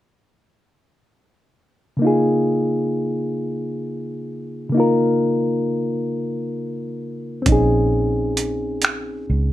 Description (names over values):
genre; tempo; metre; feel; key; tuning
slow six-eight R&B; 44 BPM (dotted quarters); 6/8; straight; Db major; A4 = 439 Hz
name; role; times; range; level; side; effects
reed electric piano; accompaniment; 2.0-9.5 s; Db3 to Bb4; -20 LUFS; left 1 dB; none
vintage muted fingered electric bass; bass; 7.5-9.5 s; Bb1 to Db2; -20 LUFS; right 1 dB; none
dusty soul sampler-style drum kit; drums; 7.5-9.0 s; finger snaps, hi-hat, kick drum; -19 LUFS; right 1 dB; overdrive
room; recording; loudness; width
moderate studio reverb, RT60 0.6 s; none; -18 LUFS; side -14 dB against mid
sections
2.0-9.5 A section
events
none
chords
2.0 Db69; 7.5 Bbm11